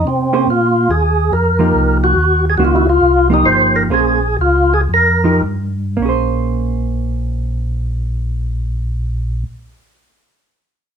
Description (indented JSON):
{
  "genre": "jazz",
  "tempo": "100-143 BPM",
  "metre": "4/4",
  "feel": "swing 65% on 8ths",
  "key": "Bb minor",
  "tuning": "A4 = 441 Hz",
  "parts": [
    { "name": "percussive tonewheel organ", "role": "melody", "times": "0.0-5.4 s", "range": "C4 to C5", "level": "-14 LUFS", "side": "equal", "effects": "overdrive, chorus vibrato, slow rotary speaker" },
    { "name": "mellow tonewheel organ", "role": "bass", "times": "0.0-9.4 s", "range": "G1 to C3", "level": "-17 LUFS", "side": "equal", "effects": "chorus vibrato, slow rotary speaker" },
    { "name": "hollow-body jazz guitar", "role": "accompaniment", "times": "0.3-9.6 s", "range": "Eb3 to C5", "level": "-18 LUFS", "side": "right 3 dB", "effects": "none" }
  ],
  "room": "moderate studio reverb, RT60 0.7 s",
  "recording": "band playing live in one room, tape saturation",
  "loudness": "-13 LUFS",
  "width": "side -7 dB against mid",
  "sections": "0.0-6.0 A section; 6.0-10.8 B section",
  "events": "slowing down 2.2-6.0",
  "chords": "0.5 Bb5; 1.3 F9sus4; 2.2 Ebm7; 3.0 F9sus4; 3.9 Bbm9; 4.9 F9sus4; 6.0 Bbm9",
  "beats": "0.06 | 0.48 0.90 1.32 1.74 | 2.16 2.58 3.01 3.45 | 3.91 4.38 4.89 5.42 | 6.00 6.60 7.20 7.80 | 8.40 9.01"
}